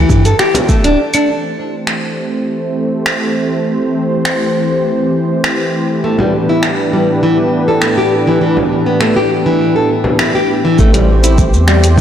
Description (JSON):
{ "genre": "organic downtempo", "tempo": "101 BPM", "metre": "4/4", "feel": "straight", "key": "A minor", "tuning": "A4 = 439 Hz", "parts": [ { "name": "nylon-string guitar", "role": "arpeggios", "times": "0.0-1.3, 6.0-12.0 s", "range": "E3 to A4", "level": "-14 LUFS", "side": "left 1 dB", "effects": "digital delay" }, { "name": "round analog bass", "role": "bass", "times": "0.0-1.0, 10.8-12.0 s", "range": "D1 to G2", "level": "-11 LUFS", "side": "equal", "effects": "tube saturation" }, { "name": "deep house drum kit", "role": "drums", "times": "0.1-12.0 s", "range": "claves, finger snaps, hi-hat, shaker", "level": "-19 LUFS", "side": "equal", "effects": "soft clipping on snare" }, { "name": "electronic kick drum", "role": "drums", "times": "0.1-0.8, 10.8-12.0 s", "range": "none", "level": "-12 LUFS", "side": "equal", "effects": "none" }, { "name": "frame drum", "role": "percussion", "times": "0.5-0.7, 6.2-11.1 s", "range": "none", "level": "-20 LUFS", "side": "left 1 dB", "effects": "none" }, { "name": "warm analog pad", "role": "sustained chords", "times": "1.3-12.0 s", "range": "A2 to C5", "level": "-15 LUFS", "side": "equal", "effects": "chorus, tremolo, sidechain pumping" } ], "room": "wet lush hall reverb, RT60 2.4 s", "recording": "blown-out, overdriven recording, overdrive", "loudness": "-11 LUFS", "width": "side -9 dB against mid", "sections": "0.0-1.3 A section; 1.3-10.8 B section; 10.8-12.0 C section", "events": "none", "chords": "0.0 Gsus2; 1.3 Am7; 6.0 Em7/A; 10.8 Am7", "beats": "0.10 0.69 | 1.28 1.88 2.47 3.07 | 3.66 4.25 4.85 5.44 | 6.04 6.63 7.22 7.82 | 8.41 9.01 9.60 10.20 | 10.79 11.38 11.98" }